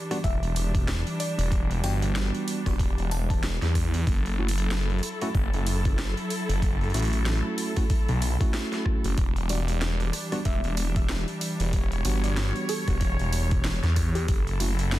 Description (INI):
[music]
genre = glitch hop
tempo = 94 BPM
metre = 4/4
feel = swing 59% on 16ths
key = E dorian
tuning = A4 = 440 Hz
[part]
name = warm studio string section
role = sustained chords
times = 0.0-15.0 s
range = E3 to C#5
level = -34 LUFS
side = equal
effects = sidechain pumping
[part]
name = tine electric piano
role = stabs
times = 0.1-14.7 s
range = G3 to F#4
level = -33 LUFS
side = right 2 dB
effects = sidechain pumping, digital delay
[part]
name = drum and bass drum kit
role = drums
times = 0.1-15.0 s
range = hi-hat, rim click, snare drum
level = -34 LUFS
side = right 1 dB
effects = overdrive
[part]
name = woody wave-folded pluck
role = melody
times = 0.2-3.4, 9.5-14.4 s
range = G4 to A5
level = -38 LUFS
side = left 1 dB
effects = lush chorus, digital delay
[part]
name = phased detuned saw bass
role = bass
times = 0.2-15.0 s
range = E1 to E2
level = -26 LUFS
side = equal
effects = phaser
[part]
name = electronic kick drum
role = drums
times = 0.2-14.4 s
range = none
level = -25 LUFS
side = equal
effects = overdrive
[sound]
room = digital ambience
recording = dense, heavily limited modern master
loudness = -24 LUFS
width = side -15 dB against mid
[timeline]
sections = 0.0-15.0 A section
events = none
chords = 0.0 Em7; 4.1 F#m7; 9.2 Em7; 14.3 F#m7